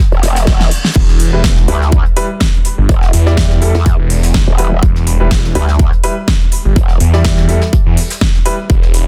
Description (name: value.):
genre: bass house.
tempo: 124 BPM.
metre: 4/4.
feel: swing 55% on 16ths.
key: E minor.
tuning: A4 = 441 Hz.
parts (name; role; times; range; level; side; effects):
reverse cymbal; sound effects; 0.2-1.0 s; none; -28 LUFS; equal; none.
growl bass; bass; 0.1-7.0 s; E1 to E2; -16 LUFS; equal; chorus, sidechain pumping.
jazz brush drum kit; drums; 0.1-9.1 s; hi-hat, snare drum; -31 LUFS; equal; high-pass filter on hats, soft clipping on snare, high-pass filter on snare, high-pass filter on room.
big-room dance drum kit; drums; 0.2-9.0 s; crash cymbal, hi-hat, snare drum; -22 LUFS; equal; none.
electronic kick drum; drums; 0.5-8.8 s; none; -14 LUFS; equal; none.
phased detuned saw bass; bass; 1.0-9.1 s; E1 to E2; -15 LUFS; equal; phaser, overdrive, sidechain pumping.
warm concert grand piano; stabs; 1.3-8.5 s; G3 to D5; -23 LUFS; equal; sidechain pumping, digital delay.
room: small room ambience.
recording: dense, heavily limited modern master.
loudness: -12 LUFS.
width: mono.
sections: 0.0-9.1 A section.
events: reverse cymbal 0.2-1.0; drum fill 0.5-1.0.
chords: 0.0 Em.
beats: 0.47 | 0.96 1.44 1.92 2.41 | 2.89 3.38 3.86 4.34 | 4.83 5.31 5.79 6.28 | 6.76 7.25 7.73 8.21 | 8.70.